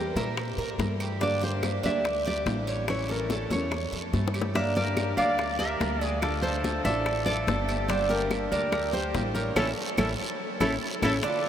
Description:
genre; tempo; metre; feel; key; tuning
latin, Cuban son and guajira; 144 BPM; 4/4; straight; unclear; A4 = 440 Hz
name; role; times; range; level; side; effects
nylon-string guitar; melody; 0.0-11.2 s; G4 to F5; -30 LUFS; equal; none
picked steel-string acoustic guitar; accompaniment; 0.0-11.5 s; D3 to G4; -35 LUFS; left 2 dB; none
Cuban tres; arpeggios; 0.0-11.5 s; C#4 to E5; -32 LUFS; right 3 dB; none
upright bass; bass; 0.0-11.2 s; G1 to Bb2; -32 LUFS; equal; none
bongos; percussion; 0.2-11.4 s; none; -37 LUFS; left 6 dB; none
congas; percussion; 0.2-11.5 s; none; -38 LUFS; left 2 dB; none
guiro; percussion; 0.2-11.5 s; none; -41 LUFS; right 3 dB; none
claves; percussion; 0.4-11.1 s; none; -42 LUFS; right 3 dB; none
warm trumpet; second line; 4.5-11.1 s; G4 to D5; -33 LUFS; left 1 dB; none
room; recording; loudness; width
wet huge ambient reverb, RT60 7.6 s; in a vast, echoing space; -25 LUFS; side -9 dB against mid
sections
0.0-11.2 A section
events
drum fill 4.1-4.6, 11.0; band accent 9.6-11.2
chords
0.0 Edim; 1.2 Gm; 2.9 A; 4.6 Gm; 6.2 Dm; 7.9 Gm; 9.6 A

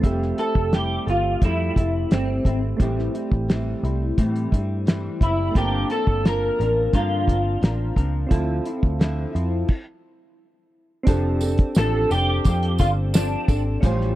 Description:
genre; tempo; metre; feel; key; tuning
indie pop, bedroom pop; 87 BPM; 4/4; straight; F major; A4 = 440 Hz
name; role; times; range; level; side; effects
flamenco guitar; accompaniment; 0.0-14.2 s; G2 to Bb4; -29 LUFS; left 4 dB; analog chorus, vibrato effect
soft electric-piano-like synth keys; accompaniment; 0.0-14.2 s; A3 to A5; -30 LUFS; right 4 dB; chorus
vintage muted picked electric bass; bass; 0.0-14.2 s; F1 to A2; -24 LUFS; equal; none
cloth-damped thuddy drum kit; drums; 0.0-14.1 s; crash cymbal, hi-hat, kick drum, snare drum; -18 LUFS; equal; none
electric guitar through a small old amp; melody; 0.4-13.6 s; C4 to Bb4; -24 LUFS; equal; ensemble chorus, tape echo
tambourine; percussion; 11.1-14.0 s; none; -39 LUFS; right 9 dB; none
room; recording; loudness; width
small room ambience; dry, close 1970s-style studio recording; -19 LUFS; side -15 dB against mid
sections
0.0-11.1 A section; 11.1-14.2 B section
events
stop 9.7-11.1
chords
0.0 Fmaj9; 2.8 Am7; 5.6 Gm11; 8.3 Dm9; 9.7 N.C.; 11.1 F6

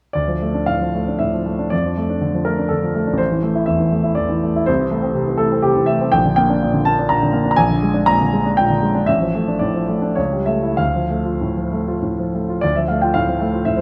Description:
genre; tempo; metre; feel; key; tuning
classical, romantic character piece for solo piano; 93-128 BPM; 3/4; rubato; D minor; A4 = 440 Hz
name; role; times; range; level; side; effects
clear grand piano; solo; 0.1-13.8 s; A1 to Bb5; -18 LUFS; equal; none
room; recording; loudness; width
moderate recital hall reverb, RT60 1.7 s; none; -18 LUFS; mono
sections
0.1-12.6 A section; 12.6-13.8 A section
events
none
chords
0.1 Dm; 1.7 Dm/F; 3.2 Am; 4.7 Am/C; 6.1 Gm/Bb; 7.6 Bb7; 9.1 Dm/A; 10.2 A7/C#; 10.8 Dm

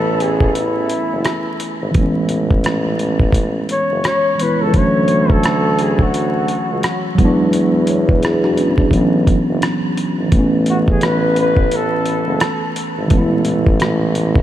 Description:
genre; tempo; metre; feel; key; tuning
lo-fi hip hop; 86 BPM; 4/4; swing 56% on 16ths; A major; A4 = 439 Hz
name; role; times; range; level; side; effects
mellow flugelhorn; melody; 0.0-12.8 s; E4 to C#5; -21 LUFS; left 1 dB; low-pass filter, ping-pong delay
tine electric piano; accompaniment; 0.0-14.4 s; E3 to C#5; -18 LUFS; right 1 dB; medium stereo tremolo, cassette tape, low-pass filter
warm tuba; bass; 0.0-14.4 s; F#1 to E2; -19 LUFS; equal; none
dusty soul sampler-style drum kit; drums; 0.2-14.4 s; hi-hat, kick drum, rim click; -19 LUFS; equal; none
room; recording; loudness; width
moderate huge ambient reverb, RT60 7.9 s; dreamy mix soaked in reverb, vinyl crackle; -13 LUFS; side -12 dB against mid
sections
0.0-10.3 A section; 10.3-14.4 B section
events
none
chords
0.0 Amaj7; 4.7 Dmaj9; 7.2 E9; 8.9 A6

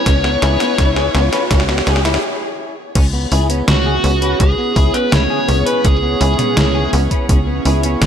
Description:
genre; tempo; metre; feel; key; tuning
synthwave; 83 BPM; 4/4; straight; C# minor; A4 = 438 Hz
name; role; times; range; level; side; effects
dark smooth lead guitar; melody; 0.0-6.9 s; F#4 to C#5; -19 LUFS; left 1 dB; overdrive, ping-pong delay
chorused pulse-width pad; sustained chords; 0.0-8.1 s; B3 to C#5; -23 LUFS; right 2 dB; sidechain pumping
riser; sound effects; 0.0-2.2 s; none; -24 LUFS; right 1 dB; none
clean electric guitar; riff; 0.1-8.1 s; C#4 to G#4; -28 LUFS; left 2 dB; ensemble chorus, tape echo
tight sequencer bass; bass; 0.1-8.1 s; G#1 to C#2; -16 LUFS; equal; none
detuned 8-bit digital drum machine; drums; 0.1-8.1 s; crash cymbal, hi-hat, snare drum, toms; -20 LUFS; equal; overdrive, high-pass filter on hats, high-pass filter on toms, high-pass filter on snare, high-pass filter on cymbals, high-pass filter on room, gated reverb
electronic kick drum; drums; 0.1-7.4 s; none; -16 LUFS; equal; overdrive
electric guitar at the edge of break-up; arpeggios; 0.2-8.0 s; B3 to B4; -24 LUFS; left 2 dB; warbly pitch drift, tape echo
room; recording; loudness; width
light reverb; none; -12 LUFS; side -8 dB against mid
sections
0.0-3.0 A section; 3.0-8.1 B section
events
drum fill 0.0-2.2; riser 0.0-2.2; stop 2.2-3.0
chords
0.0 C#m7

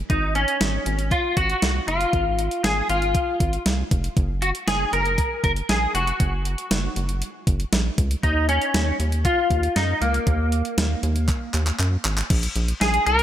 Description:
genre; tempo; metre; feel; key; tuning
synth-pop; 118 BPM; 4/4; straight; unclear; A4 = 440 Hz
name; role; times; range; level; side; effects
rubbery square bass; bass; 0.0-13.2 s; F1 to Gb2; -24 LUFS; equal; none
clean electric guitar; melody; 0.1-13.2 s; Bb3 to Bb4; -23 LUFS; left 1 dB; ensemble chorus, tape echo
clean 12-bit digital drum machine; drums; 0.1-13.2 s; crash cymbal, handclaps, hi-hat, kick drum, snare drum; -24 LUFS; equal; none
room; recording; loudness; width
light reverb; none; -20 LUFS; side -11 dB against mid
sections
0.0-12.3 A section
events
drum fill 11.3-12.3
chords
0.1 Db (rootless); 4.2 Gb; 8.2 Ebm; 12.3 Bb5

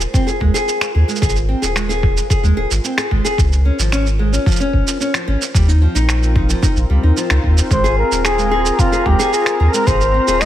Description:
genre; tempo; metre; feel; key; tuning
folktronica; 111 BPM; 4/4; straight; Ab major; A4 = 439 Hz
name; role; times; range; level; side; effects
warm analog pad; sustained chords; 0.0-10.5 s; C4 to C5; -26 LUFS; left 2 dB; chorus, tremolo, vintage 12-bit sampler grit
warm sub bass; bass; 0.0-10.5 s; Eb1 to Eb2; -15 LUFS; equal; none
electronic shaker and finger snaps; drums; 0.0-10.5 s; none; -22 LUFS; right 3 dB; none
nylon-string guitar; arpeggios; 0.1-10.5 s; F3 to Ab4; -20 LUFS; equal; ping-pong delay
electronic kick drum; drums; 0.1-10.0 s; none; -17 LUFS; equal; none
breathy flugelhorn; melody; 7.7-10.5 s; F4 to Eb5; -17 LUFS; equal; none
flickering grainy texture; texture; 8.0-10.5 s; Bb4 to Bb5; -28 LUFS; left 1 dB; built-in reverb
room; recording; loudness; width
digital ambience; none; -13 LUFS; side -12 dB against mid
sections
0.0-10.5 A section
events
none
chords
0.0 Ab; 3.4 Db6; 5.5 Ebsus2; 7.7 Ab

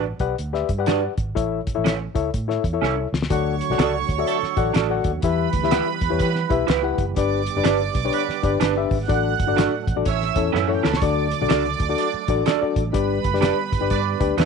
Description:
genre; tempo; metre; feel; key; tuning
uptempo 1960s-style soul; 124 BPM; 4/4; swing 63% on 8ths; D major; A4 = 442 Hz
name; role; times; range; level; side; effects
reed electric piano; accompaniment; 0.0-14.4 s; G2 to F#5; -24 LUFS; left 12 dB; overdrive
electric guitar through a small old amp; stabs; 0.0-14.5 s; C#4 to E5; -24 LUFS; right 15 dB; analog chorus
vintage muted fingered electric bass; bass; 0.0-14.5 s; F#1 to E3; -26 LUFS; right 1 dB; none
cloth-damped thuddy drum kit; drums; 0.2-14.5 s; hi-hat, kick drum, snare drum; -24 LUFS; left 2 dB; none
warm symphonic violin section; second line; 3.3-14.5 s; E4 to F#6; -27 LUFS; right 14 dB; none
mellow tonewheel organ; sustained chords; 3.3-14.5 s; D3 to A4; -32 LUFS; right 14 dB; slow rotary speaker, overdrive, chorus vibrato
dark horn section; second line; 4.3-14.3 s; A3 to D5; -32 LUFS; right 15 dB; tape echo
room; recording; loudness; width
studio reverb; 1960s-style stereo with parts hard left and right, nothing above 10.7 kHz; -19 LUFS; side -5 dB against mid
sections
0.0-3.3 A section; 3.3-14.5 B section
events
drum fill 2.8-3.3, 10.5-11.0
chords
0.0 Gmaj7; 1.4 A; 3.3 D; 5.2 Em; 7.2 G; 9.1 D; 10.1 A; 11.0 D; 12.9 G

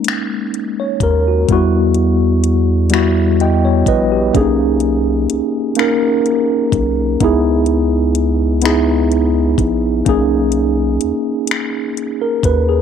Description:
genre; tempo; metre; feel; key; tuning
slow six-eight R&B; 42 BPM (dotted quarters); 6/8; straight; B major; A4 = 439 Hz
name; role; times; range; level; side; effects
tine electric piano; accompaniment; 0.0-12.8 s; G3 to G5; -14 LUFS; equal; medium stereo tremolo
smooth R&B drum kit; drums; 0.0-12.7 s; finger snaps, hi-hat, kick drum; -20 LUFS; left 3 dB; none
round analog bass; bass; 1.0-12.8 s; A#1 to E2; -17 LUFS; equal; none
room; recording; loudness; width
light reverb, digital ambience; 1960s-style stereo; -13 LUFS; side -8 dB against mid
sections
0.0-12.8 A section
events
tine electric piano fill 2.9-4.3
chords
0.0 Bmaj13 (rootless); 1.5 Emadd9; 4.3 Bmaj13; 7.2 C#m9; 10.1 Bmaj13

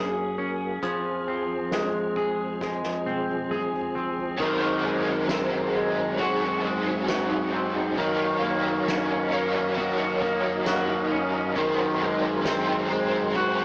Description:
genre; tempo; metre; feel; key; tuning
dream pop; 67 BPM; 4/4; straight; unclear; A4 = 442 Hz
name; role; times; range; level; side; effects
mellow tonewheel organ; sustained chords; 0.0-13.6 s; F2 to F5; -30 LUFS; equal; chorus vibrato, fast rotary speaker
electric guitar at the edge of break-up; arpeggios; 0.0-13.6 s; Eb3 to Ab4; -26 LUFS; equal; lush chorus, tape echo
soft-mallet drum kit; drums; 0.8-13.6 s; crash cymbal, hi-hat, kick drum, ride cymbal, snare drum, tambourine, toms; -33 LUFS; equal; cassette tape
overdriven electric guitar; accompaniment; 4.4-13.6 s; Eb3 to Db5; -28 LUFS; equal; tremolo, ensemble chorus
room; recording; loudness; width
wet booth ambience, RT60 0.2 s; home recording on cassette, small speaker sound; -23 LUFS; side -29 dB against mid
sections
0.0-4.4 A section; 4.4-13.6 B section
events
drum fill 2.6-4.4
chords
0.0 Gbadd9; 0.8 Fm; 4.4 Ab7/Gb; 8.0 Ebm7/Gb; 11.6 Ab7/Gb

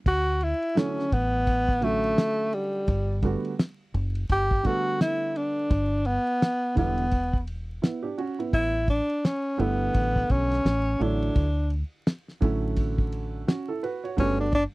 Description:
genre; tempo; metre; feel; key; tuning
hip hop, jazz-hop; 85 BPM; 4/4; swing 59% on 16ths; unclear; A4 = 440 Hz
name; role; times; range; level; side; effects
mellow tenor saxophone; melody; 0.1-14.6 s; G3 to G4; -25 LUFS; equal; none
deep dub fingered electric bass; bass; 0.1-14.6 s; E1 to D2; -28 LUFS; equal; none
cloth-damped thuddy drum kit; drums; 0.1-14.7 s; crash cymbal, hi-hat, kick drum, ride cymbal, snare drum; -25 LUFS; equal; none
warm upright piano; accompaniment; 0.8-14.5 s; D3 to C#5; -30 LUFS; right 4 dB; none
room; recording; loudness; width
little or no reverb; dry, close 1970s-style studio recording, vinyl crackle; -23 LUFS; side -21 dB against mid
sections
0.1-14.7 A section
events
tenor saxophone solo 0.1-14.7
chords
0.1 Dmaj7; 2.9 Gmaj9; 5.7 Em7; 8.5 A9sus4; 10.7 Dmaj9; 14.2 Gmaj9

